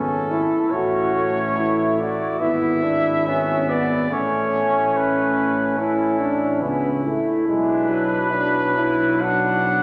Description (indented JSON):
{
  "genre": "classical, hymn-like piece for brass band",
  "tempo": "71 BPM",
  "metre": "4/4",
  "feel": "rubato",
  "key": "unclear",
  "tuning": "A4 = 439 Hz",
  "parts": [
    { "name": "mellow cornet", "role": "melody", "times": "0.0-9.8 s", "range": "A4 to F#5", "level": "-26 LUFS", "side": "equal", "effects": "none" },
    { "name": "warm flugelhorn", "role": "second line", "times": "0.0-9.8 s", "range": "B3 to E4", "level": "-31 LUFS", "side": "equal", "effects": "none" },
    { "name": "clear trombone", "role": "accompaniment", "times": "0.0-9.8 s", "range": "F#3 to D4", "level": "-28 LUFS", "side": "equal", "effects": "none" },
    { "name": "warm trombone section", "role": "accompaniment", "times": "0.0-9.8 s", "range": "B3 to F#4", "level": "-24 LUFS", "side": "equal", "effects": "none" },
    { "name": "dark tuba", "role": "bass", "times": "0.0-9.8 s", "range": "G#1 to C#2", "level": "-31 LUFS", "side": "equal", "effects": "none" }
  ],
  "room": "wet church reverb, RT60 2.9 s",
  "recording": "none",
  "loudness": "-20 LUFS",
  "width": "mono",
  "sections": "0.0-9.8 A section",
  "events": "none",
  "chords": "0.0 F#m (rootless); 0.7 A; 2.4 E7/G#; 4.1 A; 7.5 Bm",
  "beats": "| 0.72 1.57 2.40 3.26 | 4.11 4.96 5.78 6.62 | 7.48 8.32 9.22"
}